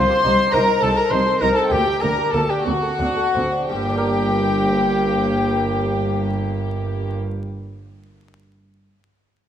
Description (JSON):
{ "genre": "classical, baroque-style concerto movement with solo episodes", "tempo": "57-71 BPM (dotted quarters)", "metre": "6/8", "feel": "straight", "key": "G minor", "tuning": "A4 = 440 Hz", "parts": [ { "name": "mellow trumpet", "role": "melody", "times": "0.0-7.2 s", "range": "F#4 to C5", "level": "-22 LUFS", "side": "equal", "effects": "none" }, { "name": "rich chamber violin section", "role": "melody", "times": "0.0-7.2 s", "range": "F#5 to C6", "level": "-26 LUFS", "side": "left 4 dB", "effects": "none" }, { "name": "warm chamber violin section", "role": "second line", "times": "0.0-7.2 s", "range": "F#4 to C5", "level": "-24 LUFS", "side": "left 2 dB", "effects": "none" }, { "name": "dark chamber viola section", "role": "accompaniment", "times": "0.0-7.2 s", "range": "Bb3 to Eb4", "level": "-27 LUFS", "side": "equal", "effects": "none" }, { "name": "dark chamber cello section", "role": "bass", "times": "0.0-7.2 s", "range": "C2 to G2", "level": "-25 LUFS", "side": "right 1 dB", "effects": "none" }, { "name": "rich chamber double bass section", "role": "bass", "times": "0.0-7.2 s", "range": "G1 to D2", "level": "-27 LUFS", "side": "right 2 dB", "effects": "none" }, { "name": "lute", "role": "accompaniment", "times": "0.1-7.4 s", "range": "D2 to C5", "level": "-27 LUFS", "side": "right 1 dB", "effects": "none" } ], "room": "wet recital hall reverb, RT60 1.8 s", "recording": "minimal, uncompressed stereo recording, vinyl crackle", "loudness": "-17 LUFS", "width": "side -9 dB against mid", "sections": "0.0-3.7 A section; 3.7-7.9 B section", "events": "slowing down 0.0-3.7", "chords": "0.0 Cm; 0.8 Adim/C; 1.7 Gm/D; 2.7 D7; 3.7 Gm" }